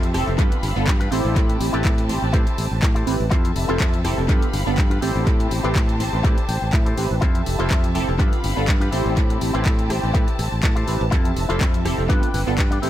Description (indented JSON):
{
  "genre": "filtered disco house",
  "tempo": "123 BPM",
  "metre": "4/4",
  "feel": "swing 54% on 16ths",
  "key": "A minor",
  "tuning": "A4 = 440 Hz",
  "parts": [
    { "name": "funky polysynth comp", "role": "accompaniment", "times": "0.0-12.9 s", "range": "B3 to B5", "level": "-26 LUFS", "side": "right 2 dB", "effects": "chorus, phaser, sidechain pumping, tape echo" },
    { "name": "warm studio violin section", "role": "sustained chords", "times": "0.0-12.9 s", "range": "C4 to B5", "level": "-31 LUFS", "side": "equal", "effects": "sidechain pumping" },
    { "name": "electric guitar with an envelope filter", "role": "riff", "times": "0.0-12.9 s", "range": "C4 to G5", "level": "-30 LUFS", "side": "left 3 dB", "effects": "sidechain pumping, tape echo" },
    { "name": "modern bright fingered electric bass", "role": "bass", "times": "0.0-12.9 s", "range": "F1 to A2", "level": "-23 LUFS", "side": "equal", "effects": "sidechain pumping" },
    { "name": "house drum kit", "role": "drums", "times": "0.0-12.9 s", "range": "handclaps, hi-hat, rim click", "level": "-30 LUFS", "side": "left 1 dB", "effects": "overdrive, sidechain pumping on hats, tape echo" },
    { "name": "electronic kick drum", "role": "drums", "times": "0.4-12.7 s", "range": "none", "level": "-20 LUFS", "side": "equal", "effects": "overdrive" }
  ],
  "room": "little or no reverb",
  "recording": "echo-heavy mix",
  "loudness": "-18 LUFS",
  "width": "side -13 dB against mid",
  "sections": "0.0-12.9 A section",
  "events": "clean electric guitar fill 6.2-7.2",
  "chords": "0.4 G7; 1.1 Am7; 3.3 Fmaj7; 4.3 G7; 5.0 Am7; 7.2 Fmaj7; 8.2 G7; 8.9 Am7; 11.1 Fmaj7; 12.1 G7",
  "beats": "0.39 0.88 | 1.36 1.85 2.34 2.83 | 3.32 3.80 4.29 4.78 | 5.27 5.75 6.24 6.73 | 7.22 7.71 8.19 8.68 | 9.17 9.66 10.14 10.63 | 11.12 11.61 12.10 12.58"
}